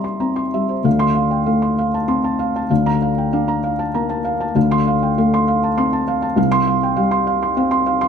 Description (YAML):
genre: neoclassical minimalist piano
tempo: 98 BPM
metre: 3/4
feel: rubato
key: D minor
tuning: A4 = 442 Hz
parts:
  - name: felt-muted upright piano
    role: solo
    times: 0.0-8.1 s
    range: C2 to C6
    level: -15 LUFS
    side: equal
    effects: none
room: moderate recital hall reverb, RT60 1.4 s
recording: none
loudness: -15 LUFS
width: side -7 dB against mid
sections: 0.9-8.1 A section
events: none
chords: 0.0 C7; 0.9 Dm7; 2.7 Bbmaj7/D; 4.6 Dm7; 6.4 Csus4